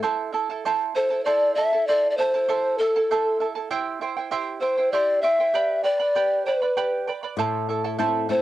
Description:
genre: andean folk, Andean ensemble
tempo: 65 BPM (dotted quarters)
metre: 6/8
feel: straight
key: A minor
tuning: A4 = 439 Hz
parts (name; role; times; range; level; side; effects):
- charango; accompaniment; 0.0-8.4 s; E4 to B5; -26 LUFS; right 6 dB; cassette tape
- mellow hollow polished pan flute; melody; 1.0-8.4 s; A4 to E5; -20 LUFS; left 1 dB; cassette tape
- flamenco guitar; accompaniment; 7.4-8.4 s; A2 to E4; -27 LUFS; left 7 dB; cassette tape
room: moderate studio reverb, RT60 0.6 s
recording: home recording on cassette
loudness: -21 LUFS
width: side -14 dB against mid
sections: 0.0-8.4 A section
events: none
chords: 0.0 Am; 3.7 C; 5.5 G; 7.4 Am

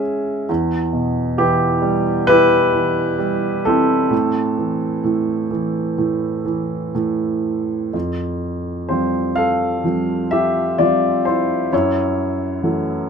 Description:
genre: classical, lyrical solo piano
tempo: 64 BPM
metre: 4/4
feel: uneven beats, rubato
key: unclear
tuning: A4 = 440 Hz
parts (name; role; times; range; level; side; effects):
- dark baby grand piano; solo; 0.0-13.1 s; E2 to F5; -16 LUFS; right 1 dB; none
room: light reverb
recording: none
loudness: -16 LUFS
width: side -6 dB against mid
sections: 0.0-7.9 A section; 7.9-13.1 B section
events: none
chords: 0.5 Em; 4.1 Am; 7.9 Fsus2; 11.7 F#m7

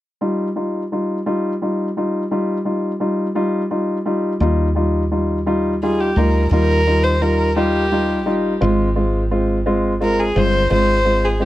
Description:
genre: pop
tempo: 57 BPM (dotted quarters)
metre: 6/8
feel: straight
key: Eb major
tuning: A4 = 438 Hz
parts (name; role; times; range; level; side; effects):
- warm baby grand piano; accompaniment; 0.2-11.5 s; G3 to F4; -18 LUFS; equal; none
- woody fretless electric bass; bass; 4.4-11.5 s; G1 to Eb2; -19 LUFS; equal; lush chorus
- dark fiddle; melody; 5.8-11.5 s; G4 to C5; -19 LUFS; equal; tape echo
room: little or no reverb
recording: dry, close 1970s-style studio recording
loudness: -16 LUFS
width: side -15 dB against mid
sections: 0.2-4.4 A section; 4.4-11.5 B section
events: none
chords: 0.2 Ebadd9; 8.6 Ab6

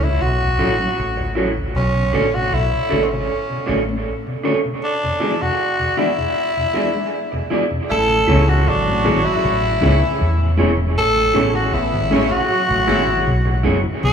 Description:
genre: reggae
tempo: 78 BPM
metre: 4/4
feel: straight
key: A major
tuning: A4 = 440 Hz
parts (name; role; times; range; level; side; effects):
- growling tenor saxophone; melody; 0.0-14.1 s; C4 to A4; -20 LUFS; equal; tape echo
- mellow tine electric piano; accompaniment; 0.0-13.8 s; E3 to A4; -26 LUFS; left 3 dB; medium stereo tremolo
- mellow tonewheel organ; accompaniment; 0.0-13.9 s; D2 to D4; -27 LUFS; left 1 dB; chorus vibrato, dub echo
- deep dub fingered electric bass; bass; 0.0-14.1 s; E1 to E2; -19 LUFS; equal; none
- electric guitar through a small old amp; stabs; 0.6-13.8 s; D4 to D5; -24 LUFS; right 5 dB; dub echo
- warm horn section; second line; 7.9-13.2 s; B2 to F#4; -24 LUFS; equal; none
room: light reverb, studio reverb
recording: small room ambience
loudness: -16 LUFS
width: side -7 dB against mid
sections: 0.0-7.9 A section; 7.9-14.1 B section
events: none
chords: 0.0 Dmaj9; 1.7 Bm9; 4.8 E7; 7.9 Amaj7

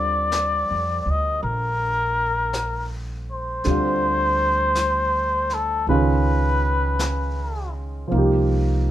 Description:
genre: jazz ballad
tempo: 54 BPM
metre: 4/4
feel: swing 68% on 8ths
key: unclear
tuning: A4 = 441 Hz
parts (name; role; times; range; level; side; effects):
- trumpet with cup mute; melody; 0.0-7.7 s; A4 to Eb5; -22 LUFS; left 2 dB; none
- warm concert grand piano; accompaniment; 0.0-8.9 s; D3 to G4; -26 LUFS; right 2 dB; none
- upright bass; bass; 0.0-8.9 s; Bb1 to F2; -24 LUFS; right 1 dB; none
- jazz brush drum kit; drums; 0.3-8.9 s; brushed snare drum, hi-hat, snare drum; -34 LUFS; left 2 dB; none
room: moderate studio reverb, RT60 0.5 s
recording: minimal, uncompressed stereo recording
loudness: -19 LUFS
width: side -12 dB against mid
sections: 0.0-8.9 A section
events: none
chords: 0.0 Ebmaj9; 3.6 Dm7; 5.9 Db9; 8.1 Cm7

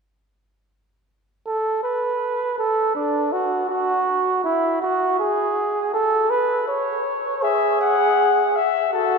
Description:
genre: classical, imitative canzona for brass ensemble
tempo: 80 BPM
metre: 4/4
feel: straight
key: unclear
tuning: A4 = 439 Hz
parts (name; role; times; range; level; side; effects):
- mellow flugelhorn; second line; 1.5-9.2 s; D4 to C#5; -19 LUFS; right 2 dB; none
- mellow trumpet; melody; 7.4-9.2 s; A4 to F#5; -19 LUFS; left 11 dB; none
room: wet cathedral reverb, RT60 4.7 s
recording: minimal, uncompressed stereo recording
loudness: -18 LUFS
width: side -4 dB against mid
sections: 1.5-9.2 A section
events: none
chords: 1.5 N.C.; 7.4 E/G#

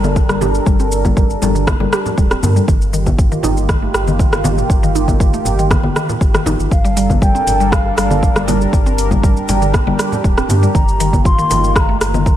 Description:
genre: afro house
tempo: 119 BPM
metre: 4/4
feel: straight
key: G minor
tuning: A4 = 438 Hz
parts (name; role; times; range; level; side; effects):
- warm analog pad; sustained chords; 0.0-12.4 s; Eb3 to Bb4; -21 LUFS; right 2 dB; chorus, sidechain pumping
- mallet-like synth pluck; arpeggios; 0.0-12.4 s; Bb2 to G4; -21 LUFS; equal; chorus, sidechain pumping, dub echo
- warm sub bass; bass; 0.0-12.3 s; D1 to G2; -19 LUFS; equal; sidechain pumping
- deep house drum kit; drums; 0.0-12.4 s; hi-hat, rim click, shaker; -21 LUFS; equal; none
- congas; percussion; 0.0-12.2 s; none; -22 LUFS; left 2 dB; none
- electronic kick drum; drums; 0.2-12.4 s; none; -14 LUFS; equal; none
- mellow hollow bansuri; melody; 6.7-12.4 s; F5 to C6; -20 LUFS; left 1 dB; dub echo
room: light reverb, digital ambience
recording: lossy compression artefacts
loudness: -12 LUFS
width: side -12 dB against mid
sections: 0.0-12.4 A section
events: filter sweep on synth pluck 0.0-12.4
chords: 0.0 Gm; 2.7 Ebadd9/G; 6.7 Gm7; 10.7 Ebadd9/G

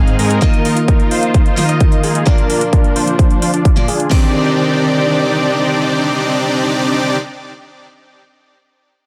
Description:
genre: EDM, festival progressive house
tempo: 130 BPM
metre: 4/4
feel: straight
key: C minor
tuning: A4 = 439 Hz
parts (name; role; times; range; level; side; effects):
- picked steel-string acoustic guitar; accompaniment; 0.0-7.2 s; Ab2 to Eb5; -21 LUFS; equal; vintage 12-bit sampler grit, sidechain pumping, digital delay
- dark chamber string section; sustained chords; 0.0-7.2 s; Eb3 to D5; -26 LUFS; equal; none
- dense compressed supersaw; riff; 0.0-7.2 s; C4 to F5; -19 LUFS; equal; sidechain pumping, low-pass filter, digital delay
- electronic hi-hat; drums; 0.1-4.1 s; none; -26 LUFS; equal; none
- big-room dance drum kit; drums; 0.4-4.2 s; hi-hat, kick drum; -14 LUFS; equal; none
room: light reverb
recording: none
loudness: -14 LUFS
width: mono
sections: 0.0-4.1 A section; 4.1-7.8 B section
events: filter sweep on supersaw synth 0.0-4.1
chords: 0.4 Ebsus2; 2.3 Bb; 4.1 Cmadd9

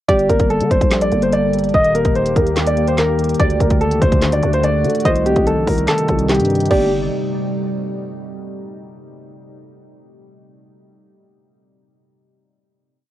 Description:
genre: hip hop, trap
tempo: 145 BPM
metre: 4/4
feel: half-time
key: G harmonic minor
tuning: A4 = 440 Hz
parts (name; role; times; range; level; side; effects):
- dark grand piano; melody; 0.1-6.9 s; G4 to Eb5; -18 LUFS; equal; low-pass filter, cassette tape
- soft round pluck; second line; 0.1-6.9 s; D5 to Eb5; -22 LUFS; right 2 dB; chorus, cassette tape, analog delay
- mellow tine electric piano; accompaniment; 0.1-6.9 s; D3 to D4; -21 LUFS; left 2 dB; medium stereo tremolo, low-pass filter, cassette tape
- deep dark ambient pad; sustained chords; 0.8-6.9 s; C3 to A4; -24 LUFS; right 1 dB; chorus, built-in reverb, cassette tape
- growling 808-style bass; bass; 0.1-7.1 s; Eb1 to D3; -21 LUFS; equal; none
- trap drum kit; drums; 0.1-6.8 s; crash cymbal, handclaps, hi-hat, kick drum, snare drum; -20 LUFS; equal; cassette tape
room: light reverb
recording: home recording on cassette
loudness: -14 LUFS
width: side -13 dB against mid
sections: 0.1-6.7 hook; 6.7-8.4 final chord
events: none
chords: 0.1 Gmadd9; 1.7 Eb; 3.4 D; 5.1 Cm; 6.7 Gmadd9

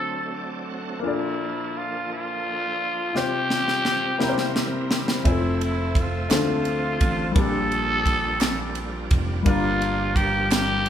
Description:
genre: slow gospel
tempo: 57 BPM (dotted quarters)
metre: 6/8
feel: straight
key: unclear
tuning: A4 = 440 Hz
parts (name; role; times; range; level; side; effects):
- growling trumpet; melody; 0.0-10.9 s; E4-20c to A4; -26 LUFS; equal; none
- warm grand piano; accompaniment; 0.0-10.9 s; G2 to E5; -27 LUFS; left 4 dB; none
- bright tonewheel organ; sustained chords; 0.0-10.9 s; F3 to F#5; -33 LUFS; right 2 dB; slow rotary speaker, chorus vibrato
- crisp fusion drum kit; drums; 3.2-10.9 s; kick drum, ride cymbal, snare drum; -24 LUFS; right 1 dB; none
- fingered electric bass; bass; 5.3-10.9 s; F1 to D2; -28 LUFS; right 1 dB; none
- group handclap; percussion; 6.3-10.8 s; none; -35 LUFS; right 4 dB; none
room: moderate large studio reverb, RT60 1.3 s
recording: band playing live in one room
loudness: -21 LUFS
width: side -9 dB against mid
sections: 0.0-10.9 A section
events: tonewheel organ fill 0.0-1.0; drum fill 3.1-5.3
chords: 0.0 D7; 1.0 Bbmaj7; 3.1 Csus4; 4.2 C7; 5.3 Fmaj7; 6.3 Dm7; 7.4 Bb6; 9.5 Gm7

